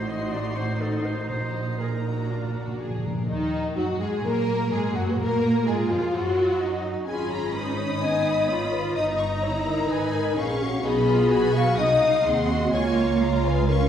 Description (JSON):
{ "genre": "quick classical-period movement for symphony orchestra", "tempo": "126 BPM", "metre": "4/4", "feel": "rubato", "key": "Eb minor", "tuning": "A4 = 440 Hz", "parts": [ { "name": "warm studio violin section", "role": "melody", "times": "0.0-13.9 s", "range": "Eb4 to Eb6", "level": "-35 LUFS", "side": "left 3 dB", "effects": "none" }, { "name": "warm clarinet", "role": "second line", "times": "0.0-3.0 s", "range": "A4 to Eb5", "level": "-33 LUFS", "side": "equal", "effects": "none" }, { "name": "warm studio violin section", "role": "second line", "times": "0.0-13.9 s", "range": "Eb4 to Cb6", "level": "-33 LUFS", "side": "left 1 dB", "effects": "none" }, { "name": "rich studio viola section", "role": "accompaniment", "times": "0.0-13.9 s", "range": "Eb3 to G#4", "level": "-30 LUFS", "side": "right 1 dB", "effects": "none" }, { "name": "dark studio double bass section", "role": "bass", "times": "0.0-13.9 s", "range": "G1 to Bb2", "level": "-28 LUFS", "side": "right 2 dB", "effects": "none" }, { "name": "rich studio cello section", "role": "bass", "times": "0.0-13.9 s", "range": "A2 to F4", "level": "-29 LUFS", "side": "right 2 dB", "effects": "none" }, { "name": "timpani", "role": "percussion", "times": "1.3-3.2 s", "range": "Bb2", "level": "-32 LUFS", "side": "equal", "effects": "none" }, { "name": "mellow French horn section", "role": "sustained chords", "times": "3.3-13.9 s", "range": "Eb4 to E#5", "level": "-25 LUFS", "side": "left 2 dB", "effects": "none" } ], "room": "wet scoring stage reverb, RT60 1.6 s", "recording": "heard from further back in the room", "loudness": "-22 LUFS", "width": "side -9 dB against mid", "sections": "0.0-3.3 A section; 3.3-13.9 B section", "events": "timpani fill 2.3-3.3", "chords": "0.0 Adim7; 1.3 Ebm/Bb; 2.3 Bb; 3.3 Ebm; 5.2 Bb5; 6.1 Ebm/Gb; 7.1 Abm; 9.0 Eb/G; 9.9 Abm; 10.8 G#m7/B; 11.8 Cdim; 12.7 C#" }